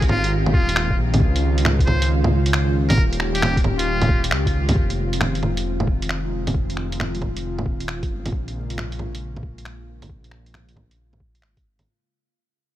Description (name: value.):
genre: future garage.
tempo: 135 BPM.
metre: 4/4.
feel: swing 67% on 16ths.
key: F minor.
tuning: A4 = 438 Hz.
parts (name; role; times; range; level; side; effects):
trumpet with metal mute; melody; 0.0-4.2 s; F4 to C5; -27 LUFS; left 1 dB; tape echo.
airy breathy pad; sustained chords; 0.0-11.8 s; Db3 to G4; -27 LUFS; equal; chorus, vintage 12-bit sampler grit, sidechain pumping.
dark detuned saw bass; bass; 0.0-11.9 s; Eb1 to Db2; -24 LUFS; equal; sidechain pumping.
electronic kick drum; drums; 0.0-11.6 s; none; -21 LUFS; equal; small room reverb.
lo-fi sampler-style drum kit; drums; 0.0-11.9 s; bongos, finger snaps, hi-hat; -24 LUFS; right 1 dB; small room reverb.
flickering grainy texture; texture; 0.0-4.8 s; F4 to F5; -36 LUFS; right 2 dB; none.
room: light reverb.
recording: vinyl crackle.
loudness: -18 LUFS.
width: side -13 dB against mid.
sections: 0.0-4.8 A section; 4.8-11.9 B section.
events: fade-out 4.8-11.9.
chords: 0.0 Abmaj7; 1.2 Dbadd9; 3.0 Eb7; 4.8 Fm7; 8.3 Bbm7.